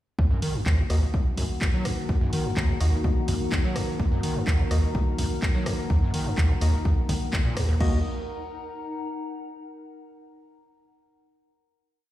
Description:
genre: acid house.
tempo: 126 BPM.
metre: 4/4.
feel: straight.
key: Eb minor pentatonic.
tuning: A4 = 440 Hz.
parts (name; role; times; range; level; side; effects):
dark analog pad; sustained chords; 0.2-8.0 s; Eb3 to Gb5; -34 LUFS; left 2 dB; lush chorus, sidechain pumping.
overdriven acid bass; riff; 0.2-8.0 s; Db2 to Gb3; -26 LUFS; equal; tube saturation, ensemble chorus, sidechain pumping, ping-pong delay.
electronic kick drum; drums; 0.2-7.9 s; none; -25 LUFS; equal; none.
warbly tape-like pad; texture; 0.8-9.7 s; Eb4 to Bb5; -35 LUFS; left 1 dB; chorus, built-in reverb, sidechain pumping.
punchy analog drum machine; drums; 0.4-7.9 s; crash cymbal, handclaps, hi-hat, rim click; -34 LUFS; equal; none.
percussive organ stab; stabs; 0.9-8.0 s; Bb3 to Eb5; -36 LUFS; left 3 dB; chorus, ping-pong delay.
room: light reverb, digital ambience.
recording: played on a big sound system in a bare room, stone room reverb.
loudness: -22 LUFS.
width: side -14 dB against mid.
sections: 0.2-7.8 groove; 7.8-9.7 final chord.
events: none.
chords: 0.2 Ebm.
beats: | 0.19 0.66 1.14 1.61 | 2.09 2.57 3.04 3.52 | 4.00 4.47 4.95 5.42 | 5.90 6.38 6.85 7.33 | 7.80 8.28 8.76 9.23.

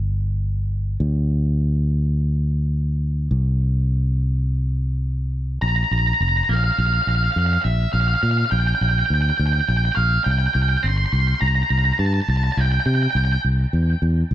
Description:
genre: post-rock.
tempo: 104 BPM.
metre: 4/4.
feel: straight.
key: unclear.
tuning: A4 = 440 Hz.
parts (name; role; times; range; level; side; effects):
fingered electric bass; bass; 0.0-14.3 s; F1 to C3; -19 LUFS; equal; none.
octave-fuzz lead guitar; melody; 5.6-13.4 s; E5 to C6; -21 LUFS; right 2 dB; distortion, analog delay.
room: little or no reverb.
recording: none.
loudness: -18 LUFS.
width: side -12 dB against mid.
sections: 0.0-5.6 A section; 5.6-14.3 B section.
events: none.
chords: 0.0 N.C.; 5.6 Bb5; 10.3 C5.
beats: 0.43 | 1.00 1.58 2.16 2.74 | 3.31 3.89 4.47 5.05 | 5.63 6.21 6.79 7.37 | 7.94 8.52 9.10 9.68 | 10.26 10.84 11.42 11.99 | 12.57 13.15 13.73 14.31.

